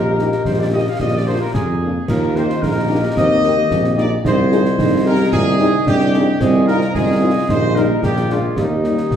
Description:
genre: military-style march for wind band.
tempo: 111 BPM.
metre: 2/4.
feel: straight.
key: Eb major.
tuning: A4 = 439 Hz.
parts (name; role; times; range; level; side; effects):
warm trumpet section; melody; 0.0-9.2 s; Eb4 to F5; -22 LUFS; left 1 dB; none.
dark euphonium; second line; 0.0-9.2 s; Bb3 to G4; -22 LUFS; right 2 dB; none.
mellow woodwind section; second line; 0.0-9.2 s; F4 to Eb5; -24 LUFS; left 2 dB; none.
warm tuba; bass; 0.0-9.2 s; Bb1 to F2; -18 LUFS; right 1 dB; none.
mellow French horn section; accompaniment; 0.2-8.9 s; G3 to Ab4; -24 LUFS; left 3 dB; none.
concert snare drum, concert bass drum and clash cymbals; drums; 0.2-9.2 s; none; -23 LUFS; equal; none.
room: wet large studio reverb, RT60 1.2 s.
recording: heard from further back in the room.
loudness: -14 LUFS.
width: side -8 dB against mid.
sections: 0.0-9.2 A section.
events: none.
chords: 0.0 Eb/Bb; 1.0 Bb; 2.1 Eb; 4.2 Ab/C; 6.4 Fm7/C; 7.5 Eb/Bb; 8.0 Bb7; 8.6 Eb.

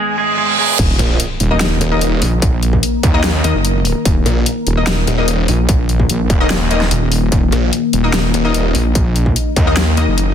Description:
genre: heavy wobble dubstep.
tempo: 147 BPM.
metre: 4/4.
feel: half-time.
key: unclear.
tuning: A4 = 441 Hz.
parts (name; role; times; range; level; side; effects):
clean electric guitar; melody; 0.0-0.8 s; Ab3 to Ab4; -18 LUFS; right 2 dB; ping-pong delay.
reverse cymbal and impact; sound effects; 0.1-2.4 s; none; -19 LUFS; right 4 dB; none.
evolving wavetable pad; sustained chords; 1.4-10.3 s; Eb3 to Bb4; -22 LUFS; left 4 dB; chorus, built-in reverb, sidechain pumping.
wobble bass; bass; 0.8-10.3 s; Eb1 to Eb2; -15 LUFS; equal; chorus, overdrive.
dubstep drum kit; drums; 0.8-10.3 s; crash cymbal, hi-hat, snare drum; -20 LUFS; left 1 dB; small room ambience.
electronic kick drum; drums; 0.8-9.6 s; none; -16 LUFS; equal; distortion, small room ambience.
snarling distorted saw bass; bass; 1.0-10.0 s; Eb1 to Eb2; -16 LUFS; equal; distortion, overdrive.
orchestra-hit-like synth stab; stabs; 1.5-10.1 s; Bb3 to Eb5; -21 LUFS; left 4 dB; built-in reverb, ping-pong delay.
room: light reverb, digital ambience.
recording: dense, heavily limited modern master.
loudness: -12 LUFS.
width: side -9 dB against mid.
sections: 0.8-10.3 A section.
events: break 0.0-0.8; reverse cymbal 0.1-0.8; drop 0.8-10.3; impact 0.8-2.4.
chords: 0.0 N.C.; 0.8 Eb5.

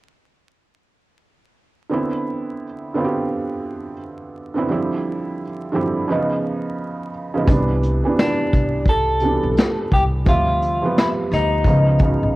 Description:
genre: lo-fi hip hop.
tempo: 86 BPM.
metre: 4/4.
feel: swing 61% on 16ths.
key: C major.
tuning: A4 = 440 Hz.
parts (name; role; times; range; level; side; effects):
felt-muted upright piano; accompaniment; 1.9-12.4 s; C3 to E5; -22 LUFS; right 2 dB; cassette tape, low-pass filter.
upright bass; bass; 7.5-12.4 s; Bb1 to D2; -20 LUFS; equal; none.
vintage brush drum kit; drums; 7.5-12.2 s; hi-hat, kick drum, snare drum; -19 LUFS; equal; none.
clean electric guitar; melody; 8.2-12.4 s; D4 to A4; -20 LUFS; left 1 dB; low-pass filter, cassette tape.
room: light reverb.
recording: home recording on cassette, vinyl crackle.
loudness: -17 LUFS.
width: side -18 dB against mid.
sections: 1.9-7.5 A section; 7.5-12.4 B section.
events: none.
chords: 1.9 Cmaj9; 4.7 Dm11; 6.1 Db9; 7.5 Cmaj9; 10.3 Dm11; 11.7 Db9.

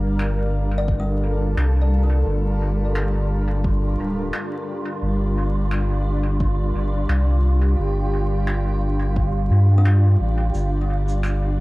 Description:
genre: ambient dub.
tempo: 87 BPM.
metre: 4/4.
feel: swing 56% on 16ths.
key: G minor.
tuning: A4 = 443 Hz.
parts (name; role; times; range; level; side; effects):
granular cloud pad; sustained chords; 0.0-11.6 s; G3 to F5; -26 LUFS; equal; built-in reverb, cassette tape.
warm sub bass; bass; 0.0-11.6 s; D1 to G2; -19 LUFS; equal; none.
wind-like tuned noise texture; texture; 0.3-11.6 s; F4; -32 LUFS; right 2 dB; built-in reverb, cassette tape.
finger snaps and shaker; drums; 0.2-11.4 s; none; -34 LUFS; equal; cassette tape, dub echo.
kalimba; arpeggios; 0.8-3.7, 9.8-11.6 s; G3 to D5; -34 LUFS; left 1 dB; cassette tape, tape echo.
electronic kick drum; drums; 0.9-9.3 s; none; -24 LUFS; equal; overdrive, cassette tape.
room: small room ambience.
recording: home recording on cassette, vinyl crackle.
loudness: -18 LUFS.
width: side -20 dB against mid.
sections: 0.0-11.6 A section.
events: none.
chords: 0.0 Gm7; 10.5 Dm7.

